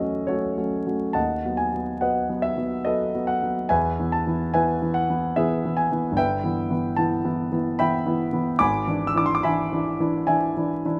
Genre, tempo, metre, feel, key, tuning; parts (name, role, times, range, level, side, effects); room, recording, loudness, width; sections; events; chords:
classical, romantic character piece for solo piano; 72 BPM; 3/4; rubato; E major; A4 = 441 Hz
warm concert grand piano; solo; 0.0-11.0 s; G1 to E6; -24 LUFS; equal
light reverb; close, detailed microphones, vinyl crackle; -24 LUFS; mono
0.0-11.0 A section
0.0 F#m7/E; 1.2 B7/D#; 3.7 E; 6.2 Em/G; 8.6 E7/G#